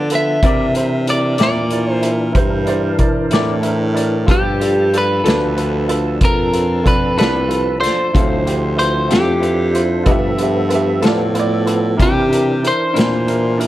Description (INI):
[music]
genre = slow blues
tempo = 62 BPM (dotted quarters)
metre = 12/8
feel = straight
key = unclear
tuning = A4 = 440 Hz
[part]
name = electric guitar at the edge of break-up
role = melody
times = 0.0-13.6 s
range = G4 to E5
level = -18 LUFS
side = equal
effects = none
[part]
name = clear upright piano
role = accompaniment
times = 0.0-13.7 s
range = D4 to E5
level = -23 LUFS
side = right 4 dB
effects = none
[part]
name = tonewheel organ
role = sustained chords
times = 0.0-13.7 s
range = E3 to A5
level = -24 LUFS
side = equal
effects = overdrive, chorus vibrato, slow rotary speaker
[part]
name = warm baritone saxophone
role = bass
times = 0.0-13.7 s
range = C2 to D3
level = -18 LUFS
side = equal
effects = none
[part]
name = vintage drum kit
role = drums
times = 0.1-13.7 s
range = hi-hat, kick drum, snare drum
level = -18 LUFS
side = equal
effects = none
[part]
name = electric guitar through a small old amp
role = accompaniment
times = 0.4-13.2 s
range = C3 to D5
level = -23 LUFS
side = left 6 dB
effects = tremolo
[part]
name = clear upright piano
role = second line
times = 2.4-3.9, 10.1-11.8 s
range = F4 to E5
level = -24 LUFS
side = right 4 dB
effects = none
[sound]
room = light reverb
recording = none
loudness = -13 LUFS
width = side -14 dB against mid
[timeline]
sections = 0.0-13.7 A section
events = none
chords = 0.4 C9; 4.3 G9; 8.1 Dm7; 10.1 G9; 12.0 C9